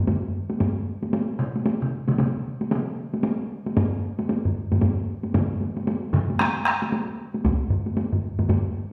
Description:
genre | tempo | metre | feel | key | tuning
japanese traditional, taiko drum ensemble | 114 BPM | 4/4 | swing 60% on 16ths | none | none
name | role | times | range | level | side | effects
solo taiko drums | percussion | 0.1-8.6 s | none | -28 LUFS | equal | none
solo taiko drums | percussion | 0.1-8.6 s | none | -27 LUFS | equal | none
taiko ensemble | percussion | 1.4-6.8 s | none | -29 LUFS | equal | none
taiko ensemble | percussion | 7.4-7.6 s | none | -28 LUFS | equal | none
room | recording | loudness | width
wet recital hall reverb, RT60 1.3 s | recorded in a church or concert hall | -25 LUFS | mono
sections
0.0-8.9 A section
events
none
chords
none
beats
0.08 0.61 | 1.14 1.67 2.19 2.72 | 3.25 3.77 4.30 4.83 | 5.35 5.88 6.40 6.92 | 7.45 7.97 8.49

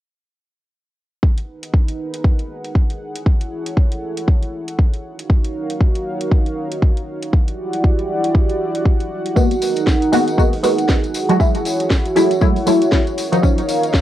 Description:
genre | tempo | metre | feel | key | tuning
deep house | 118 BPM | 4/4 | swing 58% on 16ths | G# minor | A4 = 442 Hz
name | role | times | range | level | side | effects
warm analog pad | sustained chords | 1.2-14.0 s | D#4 to F#5 | -22 LUFS | right 1 dB | chorus, sidechain pumping, cassette tape
electronic kick drum | drums | 1.2-14.0 s | none | -15 LUFS | equal | studio reverb, cassette tape
house drum kit | drums | 1.4-14.0 s | hi-hat, snare drum | -25 LUFS | equal | studio reverb, cassette tape
filtered dub chord stab | stabs | 9.4-13.6 s | D#3 to F#4 | -17 LUFS | equal | phaser, wide subtle chorus, sidechain pumping, cassette tape, tape echo
tambourine | percussion | 9.4-14.0 s | none | -32 LUFS | left 3 dB | none
room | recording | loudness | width
light reverb | home recording on cassette | -15 LUFS | side -13 dB against mid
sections
1.2-14.0 A section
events
none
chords
1.2 G#m9; 3.0 F#m9; 5.0 D#m9; 7.3 Em9; 9.4 G#m9; 11.1 F#m9; 13.2 D#m9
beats
| 1.23 1.74 2.25 2.75 | 3.26 3.77 4.28 4.79 | 5.30 5.80 6.31 6.82 | 7.33 7.84 8.35 8.86 | 9.37 9.87 10.38 10.89 | 11.40 11.91 12.41 12.92 | 13.43 13.94

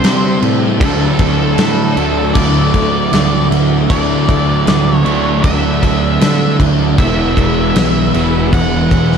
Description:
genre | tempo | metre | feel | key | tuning
rock, shoegaze and dream pop | 78 BPM | 4/4 | straight | D lydian | A4 = 436 Hz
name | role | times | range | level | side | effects
octave-fuzz lead guitar | melody | 0.0-9.2 s | A4 to F#5 | -20 LUFS | left 2 dB | distortion, slapback echo
phased string machine | sustained chords | 0.0-9.2 s | D4 to G5 | -24 LUFS | equal | ensemble chorus, phaser
overdriven semi-hollow guitar | riff | 0.0-9.2 s | C3 to E4 | -16 LUFS | right 11 dB | reverse reverb
thick fuzz guitar | riff | 0.0-9.2 s | E2 to D4 | -19 LUFS | left 13 dB | distortion, wide subtle chorus
fuzz picked electric bass | bass | 0.0-9.2 s | E1 to D3 | -17 LUFS | equal | overdrive
big rock drum kit | drums | 0.0-9.2 s | crash cymbal, kick drum, snare drum | -16 LUFS | equal | none
room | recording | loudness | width
studio reverb | dark, warm production | -10 LUFS | side -7 dB against mid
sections
0.0-9.2 A section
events
none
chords
0.0 Csus2; 0.8 Dadd9; 7.0 Eadd9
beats
0.04 | 0.81 1.58 2.35 3.12 | 3.90 4.67 5.44 6.21 | 6.98 7.76 8.53

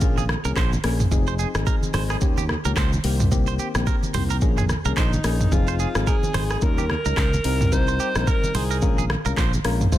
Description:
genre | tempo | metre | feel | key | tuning
afrobeats | 109 BPM | 4/4 | swing 58% on 16ths | unclear | A4 = 440 Hz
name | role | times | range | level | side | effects
warm alto saxophone | melody | 0.0-0.3, 5.0-9.1 s | Eb4 to C5 | -29 LUFS | right 1 dB | none
soft electric-piano-like synth keys | accompaniment | 0.0-10.0 s | Eb3 to C5 | -29 LUFS | left 6 dB | chorus
modern bright fingered electric bass | bass | 0.0-10.0 s | F1 to Eb2 | -24 LUFS | equal | none
deep house drum kit | drums | 0.0-10.0 s | handclaps, hi-hat, kick drum, rim click, shaker, toms | -23 LUFS | equal | none
direct-recorded clean electric guitar | riff | 0.2-9.5 s | G4 to C5 | -31 LUFS | right 10 dB | tape echo
congas | percussion | 0.2-10.0 s | none | -30 LUFS | right 2 dB | none
room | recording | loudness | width
little or no reverb | dense, heavily limited modern master | -19 LUFS | side -13 dB against mid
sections
0.0-10.0 A section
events
none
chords
0.0 Bbm7; 1.1 Fm7; 2.2 Eb7; 3.0 Cm7; 4.4 Bbm7; 5.5 Fm7; 6.6 Eb7; 7.4 Cm7; 8.8 Bbm7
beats
0.01 0.56 | 1.11 1.67 2.22 2.77 | 3.32 3.87 4.42 4.97 | 5.52 6.07 6.62 7.17 | 7.72 8.27 8.82 9.37 | 9.92

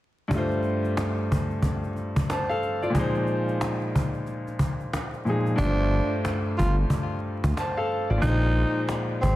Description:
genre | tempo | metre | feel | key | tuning
hip hop, boom-bap hip-hop | 91 BPM | 4/4 | swing 62% on 16ths | G phrygian | A4 = 437 Hz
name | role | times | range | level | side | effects
clear grand piano | accompaniment | 0.3-9.4 s | G2 to A5 | -26 LUFS | left 1 dB | cassette tape
cajon | drums | 0.3-9.4 s | none | -28 LUFS | equal | none
growling tenor saxophone | melody | 5.6-9.4 s | C4 to F4 | -29 LUFS | right 1 dB | ping-pong delay
smooth gliding synth bass | bass | 5.6-9.4 s | G1 to D2 | -23 LUFS | equal | none
room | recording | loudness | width
light reverb | dense, heavily limited modern master, vinyl crackle | -23 LUFS | side -16 dB against mid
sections
0.3-5.6 A section; 5.6-9.4 B section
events
hi-hats muted 5.6-9.4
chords
0.3 G9sus4; 2.9 Bb9sus4; 5.6 G9sus4; 8.2 Bb9sus4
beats
| 0.31 0.97 1.63 2.29 | 2.95 3.61 4.27 4.93 | 5.59 6.25 6.90 7.56 | 8.22 8.88

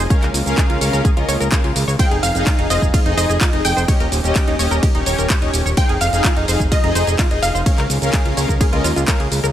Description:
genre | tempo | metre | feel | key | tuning
progressive house | 127 BPM | 4/4 | straight | F minor | A4 = 438 Hz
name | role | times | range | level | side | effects
wide unison pluck | melody | 0.0-9.0 s | Eb5 to Ab5 | -24 LUFS | equal | digital delay
soft round pluck | second line | 0.0-9.0 s | Eb5 to Ab5 | -33 LUFS | equal | none
supersaw pad | sustained chords | 0.0-9.5 s | Db3 to Ab4 | -28 LUFS | right 1 dB | none
tight sequenced synth | arpeggios | 0.0-9.5 s | Eb4 to Db6 | -25 LUFS | equal | chorus, sidechain pumping, digital delay
fat analog bass | bass | 0.0-9.5 s | Eb1 to Eb2 | -20 LUFS | equal | sidechain pumping
house drum kit | drums | 0.0-9.5 s | handclaps, hi-hat, ride cymbal, shaker | -23 LUFS | right 1 dB | none
soft supersaw | stabs | 0.1-9.2 s | Db4 to F5 | -23 LUFS | left 2 dB | sidechain pumping, digital delay
electronic kick drum | drums | 0.1-9.2 s | none | -16 LUFS | equal | none
room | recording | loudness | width
digital ambience | none | -14 LUFS | side -11 dB against mid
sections
0.0-9.5 A section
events
none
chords
0.1 Db6; 2.0 Fm7; 3.9 Eb7; 5.8 Fm7; 7.7 Db6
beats
| 0.10 0.58 1.05 1.52 | 1.99 2.47 2.94 3.41 | 3.88 4.36 4.83 5.30 | 5.77 6.25 6.72 7.19 | 7.66 8.13 8.61 9.08

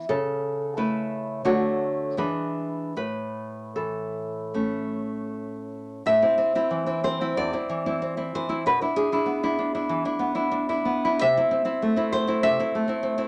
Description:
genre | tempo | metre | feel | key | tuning
romantic piece for solo classical guitar | 74-100 BPM | 4/4 | rubato | A major, A minor from 6.1 s | A4 = 440 Hz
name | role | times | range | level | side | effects
nylon-string guitar | solo | 0.0-13.3 s | E2 to E5 | -26 LUFS | equal | none
room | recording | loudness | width
wet club ambience, RT60 0.5 s | none | -26 LUFS | mono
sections
0.0-6.1 A section; 6.1-13.3 B section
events
none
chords
0.1 A/C#; 1.5 D; 2.2 E7; 3.0 A; 6.1 Am (rootless); 8.6 E7/B; 11.2 Am/C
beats
| 0.09 0.77 1.45 2.18 | 2.96 3.75 4.54 5.30 | 6.05 6.72 7.37 8.01 | 8.64 9.26 9.89 10.52 | 11.20 11.82 12.42 13.02

